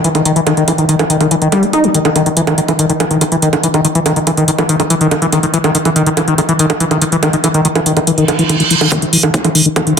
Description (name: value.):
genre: psychedelic trance.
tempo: 142 BPM.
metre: 4/4.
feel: straight.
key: unclear.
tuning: A4 = 440 Hz.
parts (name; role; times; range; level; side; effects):
liquid acid bass; riff; 0.0-10.0 s; Eb3 to Eb4; -12 LUFS; left 2 dB; chorus, auto-pan, sidechain pumping, ping-pong delay.
electronic hi-hat and bongos; drums; 0.0-10.0 s; none; -15 LUFS; right 4 dB; none.
reverse cymbal; sound effects; 8.2-8.9 s; none; -16 LUFS; right 5 dB; none.
electronic kick drum; drums; 8.9-9.8 s; none; -20 LUFS; equal; high-pass filter on kick, high-pass filter on room.
room: wet plate reverb, RT60 1.2 s, digital ambience.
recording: dense, heavily limited modern master.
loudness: -10 LUFS.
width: side -7 dB against mid.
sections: 0.0-8.9 A section; 8.9-10.0 B section.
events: reverse cymbal 8.2-8.9; build-up 8.9-10.0.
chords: none.